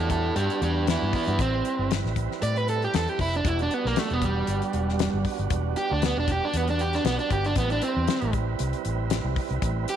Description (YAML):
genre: straight-eighth soul blues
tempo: 116 BPM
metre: 4/4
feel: swing 55% on 16ths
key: E minor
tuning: A4 = 440 Hz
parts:
  - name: overdriven semi-hollow guitar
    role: melody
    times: 0.0-10.0 s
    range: G3 to D5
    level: -27 LUFS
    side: right 1 dB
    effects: none
  - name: tonewheel organ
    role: accompaniment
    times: 0.0-10.0 s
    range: G3 to B4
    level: -32 LUFS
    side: right 12 dB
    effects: slow rotary speaker, overdrive
  - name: vintage muted fingered electric bass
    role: bass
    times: 0.0-9.8 s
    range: E1 to A2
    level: -27 LUFS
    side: left 1 dB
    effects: none
  - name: damped 70s drum kit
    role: drums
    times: 0.1-10.0 s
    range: hi-hat, kick drum, snare drum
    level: -30 LUFS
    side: left 5 dB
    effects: none
room: light reverb, small room ambience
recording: 1960s-style stereo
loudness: -23 LUFS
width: side -9 dB against mid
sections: 0.0-10.0 A section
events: overdriven electric guitar solo 0.0-10.0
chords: 0.0 Em9; 1.4 Am9; 3.4 Em9; 7.6 Am9